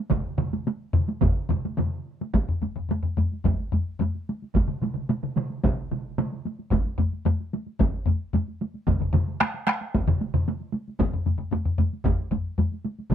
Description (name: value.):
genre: japanese traditional, taiko drum ensemble.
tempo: 111 BPM.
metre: 4/4.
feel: straight.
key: none.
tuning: none.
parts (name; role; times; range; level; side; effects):
taiko ensemble; percussion; 0.1-13.1 s; none; -28 LUFS; right 1 dB; none.
taiko ensemble; percussion; 0.1-12.7 s; none; -25 LUFS; left 2 dB; none.
taiko ensemble; percussion; 0.1-13.1 s; none; -28 LUFS; right 3 dB; none.
taiko ensemble; percussion; 0.1-13.1 s; none; -26 LUFS; equal; none.
room: little or no reverb.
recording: close, detailed microphones.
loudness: -24 LUFS.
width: side -9 dB against mid.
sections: 0.0-2.3 A section; 2.3-13.1 B section.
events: speeding up 0.0-13.1.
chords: none.